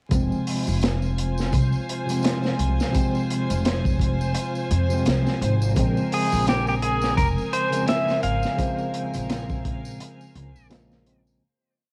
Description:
trip hop; 85 BPM; 4/4; swing 57% on 16ths; F minor; A4 = 440 Hz
tine electric piano; accompaniment; 0.1-11.4 s; C3 to C4; -29 LUFS; equal; tremolo, cassette tape
warm symphonic string section; sustained chords; 0.1-11.4 s; F4 to Ab5; -36 LUFS; equal; cassette tape
upright bass; bass; 0.1-11.4 s; F1 to F2; -27 LUFS; equal
crunchy breakbeat drum kit; drums; 0.1-11.3 s; hi-hat, kick drum, snare drum; -28 LUFS; equal
tambourine; percussion; 0.1-11.4 s; -45 LUFS; equal
backwards swelling texture; texture; 1.3-11.4 s; C5; -39 LUFS; equal; built-in reverb, cassette tape
clean lap steel guitar; melody; 6.1-10.7 s; G4 to F5; -28 LUFS; equal; tape echo
light reverb; home recording on cassette, vinyl crackle; -23 LUFS; mono
0.1-11.4 groove
fade-out 7.6-11.4
0.1 Fm; 5.8 Bbm7
| 0.12 0.83 1.53 2.24 | 2.94 3.65 4.36 5.06 | 5.77 6.47 7.18 7.88 | 8.59 9.30 10.00 10.71

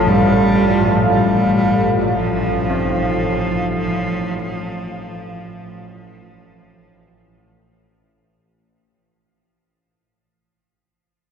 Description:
dark ambient drone; 57 BPM; 4/4; straight; A4 = 445 Hz
clear cello; melody; 0.0-7.4 s; F3 to G3; -19 LUFS; equal; shimmer reverb, diffuse ambient delay
deep dark ambient pad; sustained chords; 0.0-8.5 s; A2 to F5; -20 LUFS; equal; chorus, built-in reverb, shimmer reverb
carillon bells; arpeggios; 0.0-9.0 s; G2 to C4; -25 LUFS; equal; diffuse ambient delay
bowed-like drone; drone; 0.0-8.6 s; A1 to A2; -23 LUFS; left 1 dB; built-in reverb
wet cathedral reverb, RT60 6.0 s; worn, warbling old tape, cassette tape, warbly pitch drift; -15 LUFS; side -7 dB against mid
0.0-8.5 A section
fade-out 0.0-8.5
0.0 F
| 0.07 1.12 2.18 3.23 | 4.28 5.33 6.39 7.44

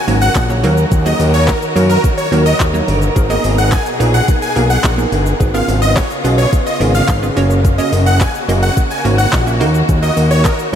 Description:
dance-pop; 107 BPM; 4/4; straight; G# minor; A4 = 443 Hz
supersaw chords; melody; 0.0-10.5 s; A#4 to G#5; -18 LUFS; equal; sidechain pumping, ping-pong delay
warm studio string section; sustained chords; 0.0-10.8 s; B2 to A#4; -20 LUFS; left 1 dB; sidechain pumping
hollow square pluck; accompaniment; 0.1-10.8 s; F#3 to E5; -20 LUFS; right 3 dB; chorus, sidechain pumping
fat analog bass; bass; 0.1-10.8 s; F#1 to F#2; -14 LUFS; equal; sidechain pumping
smooth R&B drum kit; drums; 0.1-10.7 s; handclaps, hi-hat, kick drum, shaker; -18 LUFS; equal
tube shaker; percussion; 0.2-10.7 s; -37 LUFS; left 17 dB
moderate huge ambient reverb, RT60 8.3 s; dreamy mix soaked in reverb; -11 LUFS; side -9 dB against mid
0.0-10.8 A section
0.0 F#; 0.6 D#m; 3.2 G#madd9; 5.4 C#7/G#; 7.4 F#; 9.6 D#m
0.36 | 0.92 1.48 2.04 2.60 | 3.16 3.72 4.28 4.84 | 5.40 5.96 6.53 7.09 | 7.65 8.21 8.77 9.33 | 9.89 10.45

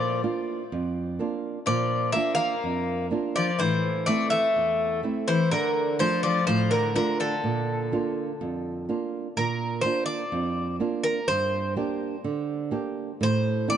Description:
greek folk, Greek bouzouki band; 125 BPM; 4/4; straight; A4 = 440 Hz
Greek bouzouki; melody; 0.0-13.8 s; A4 to F5; -27 LUFS; equal
Greek bouzouki; second line; 0.0-8.8 s; D3 to Bb3; -29 LUFS; left 6 dB
flamenco guitar; accompaniment; 0.0-13.8 s; E2 to G4; -28 LUFS; right 3 dB
moderate plate reverb, RT60 3.5 s; dark, warm production, nothing above 10.7 kHz; -24 LUFS; side -9 dB against mid
0.0-9.4 A section; 9.4-13.8 A section
0.0 Bb; 3.6 Am; 5.5 Dm; 7.4 Bb; 11.3 Gm; 13.2 Am
0.23 0.71 1.19 | 1.67 2.15 2.63 3.12 | 3.60 4.08 4.56 5.04 | 5.52 6.00 6.48 6.96 | 7.44 7.92 8.40 8.88 | 9.36 9.84 10.32 10.80 | 11.29 11.77 12.25 12.73 | 13.21 13.69

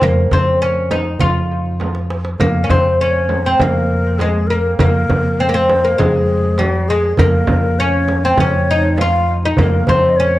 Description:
Arabic maqam ensemble; 100 BPM; 4/4; straight; F maqam bayati; A4 = 440 Hz
oud; melody; 0.0-10.4 s; Gb3+50c to F4; -16 LUFS; left 1 dB; plate reverb, analog delay
upright bass; bass; 0.0-10.4 s; F2; -17 LUFS; equal
darbuka; percussion; 0.0-10.1 s; -22 LUFS; right 1 dB
frame drum; percussion; 0.0-10.0 s; -22 LUFS; right 3 dB
breathy bright low ney; second line; 2.4-10.4 s; Gb4+45c to F5; -21 LUFS; left 2 dB; plate reverb
moderate studio reverb, RT60 0.5 s; cassette tape; -12 LUFS; side -16 dB against mid
0.0-10.4 A section
drum fill 1.8-2.4
| 0.01 0.61 1.21 1.80 | 2.40 3.00 3.60 4.20 | 4.79 5.39 5.99 6.59 | 7.19 7.79 8.38 8.98 | 9.58 10.18

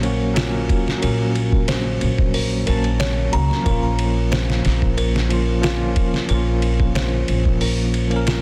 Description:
trip hop; 91 BPM; 4/4; straight; Bb minor; A4 = 440 Hz
bell-like tine electric piano; accompaniment; 0.0-8.4 s; F3 to A5; -25 LUFS; equal; tremolo
upright bass; bass; 0.0-8.4 s; Bb1 to Db2; -23 LUFS; equal
trip hop sampler-style drum kit; drums; 0.0-8.4 s; hi-hat, kick drum, ride cymbal, snare drum; -25 LUFS; equal
music box; arpeggios; 0.4-8.4 s; F4 to Bb5; -30 LUFS; equal; delay
digital ambience; dense, heavily limited modern master; -19 LUFS; mono
0.0-8.4 A section
0.0 Gb/Bb; 3.7 Bbm
0.36 | 1.02 1.68 2.34 3.00 | 3.66 4.32 4.98 5.63 | 6.29 6.95 7.61 8.27

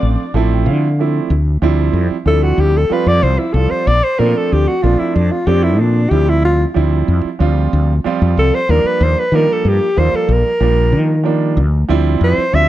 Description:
jazz; 94 BPM; 4/4; straight; D minor; A4 = 441 Hz
breathy alto saxophone; melody; 0.0-12.7 s; D4 to E5; -16 LUFS; left 1 dB; slapback echo
mellow tenor saxophone; second line; 0.0-0.6 s; D4; -32 LUFS; left 9 dB
warm concert grand piano; accompaniment; 0.0-12.7 s; F3 to A5; -19 LUFS; right 8 dB
mellow fretless electric bass; bass; 0.0-12.7 s; A1 to Eb3; -14 LUFS; left 1 dB
studio reverb; dry, close 1970s-style studio recording; -12 LUFS; side -13 dB against mid
0.0-1.3 A section; 1.3-12.7 B section
grand piano fill 0.0-1.3; alto saxophone solo 1.3-12.7
0.0 Dm9; 1.3 Dm11; 3.9 Bbmaj9; 6.1 Dm11; 8.7 Ebmaj7; 11.6 Dm11
0.02 0.66 | 1.30 1.95 2.59 3.23 | 3.88 4.52 5.16 5.80 | 6.44 7.09 7.73 8.37 | 9.01 9.65 10.29 10.93 | 11.57 12.21

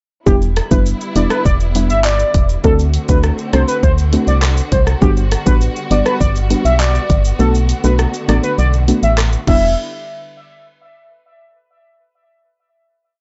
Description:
dancehall; 101 BPM; 4/4; straight; E minor; A4 = 444 Hz
warm velvety synth lead; melody; 0.3-9.8 s; G4 to E5; -21 LUFS; equal; chorus, tape echo
soft round pluck; accompaniment; 0.3-9.7 s; G3 to F#4; -21 LUFS; equal; chorus
warm studio string section; sustained chords; 0.3-9.8 s; D3 to F#4; -29 LUFS; equal; sidechain pumping
organ-like FM bass; bass; 0.3-9.8 s; E1 to D2; -17 LUFS; equal
pop drum kit; drums; 0.3-9.6 s; crash cymbal, handclaps, hi-hat, kick drum, rim click, shaker; -20 LUFS; equal
little or no reverb; dry, gritty hardware recording, nothing above 7.8 kHz; -14 LUFS; mono
0.3-9.8 chorus; 9.8-12.1 final hit
kick muted 7.4-9.8
0.3 Em7; 2.6 D7; 5.0 Gmaj7; 7.4 Bm7; 9.5 Em7; 9.8 N.C.
| 0.27 0.86 1.45 2.05 | 2.64 3.24 3.83 4.42 | 5.02 5.61 6.21 6.80 | 7.39 7.99 8.58 9.18

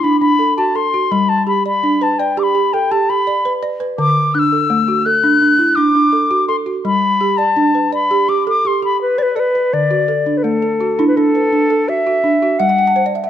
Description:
west african traditional, West African string and xylophone music; 84 BPM; 4/4; straight; D mixolydian; A4 = 445 Hz
mellow wooden flute; melody; 0.0-13.3 s; A4 to F#6; -15 LUFS; left 2 dB
balafon; arpeggios; 0.0-13.3 s; D3 to A5; -17 LUFS; right 2 dB
moderate recital hall reverb, RT60 1.5 s; -12 LUFS; side -10 dB against mid
0.0-9.7 A section; 9.7-13.3 B section
flute solo 0.0-9.7; balafon fill 12.6-13.3
0.0 D; 1.1 G; 4.0 D; 6.8 G; 9.7 D; 12.6 G5
0.39 | 1.10 1.82 2.54 3.26 | 3.97 4.69 5.41 6.13 | 6.85 7.57 8.29 9.01 | 9.72 10.45 11.17 11.89 | 12.61

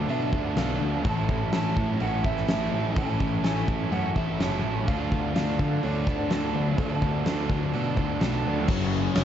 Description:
rock, shoegaze and dream pop; 126 BPM; 4/4; straight; A4 = 440 Hz
electric guitar through a small old amp; melody; 0.0-9.2 s; A4 to A5; -35 LUFS; right 1 dB; analog delay
electric guitar through a small old amp; arpeggios; 0.0-9.2 s; E3 to A4; -38 LUFS; equal; wide subtle chorus, analog delay
overdriven electric guitar; riff; 0.0-8.7 s; A2 to A4; -31 LUFS; right 9 dB; reverse reverb
thick fuzz guitar; riff; 0.0-9.2 s; F#2 to D4; -31 LUFS; left 8 dB; distortion, analog chorus
fuzz picked electric bass; bass; 0.0-9.2 s; F#1 to D3; -29 LUFS; equal; overdrive
huge arena drum kit; drums; 0.1-9.2 s; crash cymbal, hi-hat, kick drum, snare drum; -29 LUFS; equal
distorted electric guitar; riff; 8.7-9.2 s; F#2 to F#3; -29 LUFS; equal; overdrive
tambourine; percussion; 8.7-9.2 s; -48 LUFS; right 8 dB
moderate studio ambience, RT60 0.5 s; cassette tape, nothing above 7.8 kHz; -23 LUFS; side -10 dB against mid
0.0-8.7 A section
0.0 Dm6; 1.0 Amaj7; 4.9 Dm6; 8.7 F#madd9
0.09 0.57 | 1.05 1.53 2.01 2.48 | 2.96 3.44 3.92 4.40 | 4.88 5.35 5.83 6.31 | 6.79 7.26 7.74 8.21 | 8.68 9.16

